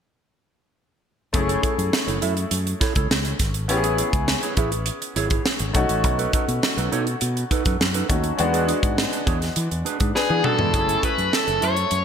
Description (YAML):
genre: polished 1980s jazz-funk pop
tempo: 102 BPM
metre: 4/4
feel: straight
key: F# minor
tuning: A4 = 441 Hz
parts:
  - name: clear baby grand piano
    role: accompaniment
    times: 1.3-12.0 s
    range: G#3 to B4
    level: -26 LUFS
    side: left 3 dB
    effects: lush chorus
  - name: mellow electric guitar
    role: riff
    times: 1.3-12.0 s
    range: D4 to E5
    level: -29 LUFS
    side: right 7 dB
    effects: lush chorus
  - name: fretless electric bass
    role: bass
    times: 1.3-12.0 s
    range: F#1 to E3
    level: -25 LUFS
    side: equal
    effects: none
  - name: crisp fusion drum kit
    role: drums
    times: 1.3-12.0 s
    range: hi-hat, kick drum, snare drum, toms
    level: -23 LUFS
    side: right 1 dB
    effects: gated reverb
  - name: bluesy overdriven lead guitar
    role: melody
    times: 10.2-12.0 s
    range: G#4 to C#5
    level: -21 LUFS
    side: equal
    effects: distortion
room: moderate lush hall reverb, RT60 1.6 s, small room ambience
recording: bright 1980s-style digital production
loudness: -19 LUFS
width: side -8 dB against mid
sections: 1.3-10.7 A section; 10.7-12.0 B section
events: drum fill 10.2-10.7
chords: 1.3 F#m7; 3.7 Amaj7; 5.7 B7; 8.4 E7; 10.7 F#m7